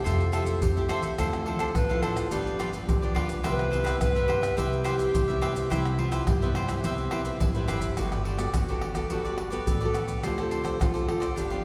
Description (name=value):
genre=samba and choro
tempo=106 BPM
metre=4/4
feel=straight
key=C major, G major from 8.0 s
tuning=A4 = 439 Hz
part: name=dark clarinet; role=second line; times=0.0-11.6 s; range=E4 to B4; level=-34 LUFS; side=equal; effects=none
part: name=cavaquinho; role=accompaniment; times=0.0-11.6 s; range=D4 to F5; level=-36 LUFS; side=equal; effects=none
part: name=nylon-string guitar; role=accompaniment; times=0.0-11.6 s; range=G2 to A4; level=-36 LUFS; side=equal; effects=none
part: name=upright bass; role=bass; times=0.1-11.6 s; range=G1 to G2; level=-34 LUFS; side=equal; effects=none
part: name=maracas, surdo, pandeiro and tamborim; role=percussion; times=0.1-11.6 s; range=none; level=-32 LUFS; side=equal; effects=none
room=wet church reverb, RT60 3.0 s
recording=recorded in a church or concert hall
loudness=-27 LUFS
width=mono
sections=0.0-8.0 A section; 8.0-11.6 B section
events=none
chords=0.0 Fmaj9; 1.2 Dm9; 2.3 G7; 3.5 Cmaj7; 8.0 Gmaj9; 10.2 Dm7